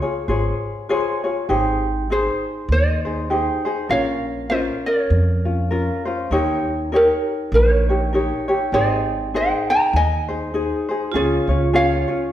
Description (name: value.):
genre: Hawaiian.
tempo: 100 BPM.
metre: 4/4.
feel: swing 58% on 8ths.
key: Ab major.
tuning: A4 = 440 Hz.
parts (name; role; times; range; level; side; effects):
ukulele; melody; 0.0-12.3 s; F4 to Bb5; -20 LUFS; equal; none.
ukulele; accompaniment; 0.0-12.3 s; Db4 to Db5; -22 LUFS; left 1 dB; none.
upright bass; bass; 0.3-12.0 s; Ab1 to F2; -22 LUFS; right 1 dB; none.
vibraphone with soft mallets; second line; 11.1-12.3 s; F4; -24 LUFS; right 3 dB; none.
room: wet recital hall reverb, RT60 1.3 s.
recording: recorded in a church or concert hall.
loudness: -17 LUFS.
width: side -12 dB against mid.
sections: 0.0-1.5 A section; 1.5-11.1 B section; 11.1-12.3 A section.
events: none.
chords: 0.0 Dbmaj7; 1.5 Abmaj7; 3.9 Bbm; 6.3 Eb7; 8.7 Abmaj7; 11.1 Db.